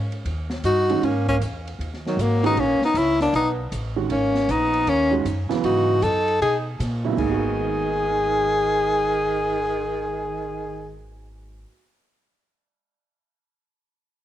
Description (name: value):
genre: jazz, small-group swing and bop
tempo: 156 BPM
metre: 4/4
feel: swing 65% on 8ths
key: G# minor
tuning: A4 = 441 Hz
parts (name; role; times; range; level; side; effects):
- upright bass; bass; 0.0-11.6 s; G#1 to B2; -28 LUFS; equal; none
- open jazz drum kit; drums; 0.1-7.3 s; crash cymbal, hi-hat, kick drum, ride cymbal, snare drum; -35 LUFS; equal; cassette tape
- warm tenor saxophone; melody; 0.7-11.0 s; F#3 to A4; -21 LUFS; left 2 dB; cassette tape
- clear tenor saxophone; second line; 0.7-11.0 s; D#3 to D#4; -30 LUFS; right 9 dB; cassette tape
- warm grand piano; accompaniment; 0.9-11.8 s; G#2 to F#4; -27 LUFS; right 8 dB; cassette tape
room: moderate spring reverb, RT60 1.6 s, studio reverb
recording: home recording on cassette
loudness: -20 LUFS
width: side -12 dB against mid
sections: 0.0-7.2 A section; 7.2-10.3 B section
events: none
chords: 0.3 D#7#9; 1.0 G#5; 2.6 A#dim; 3.3 Amaj9#11; 4.1 G#m9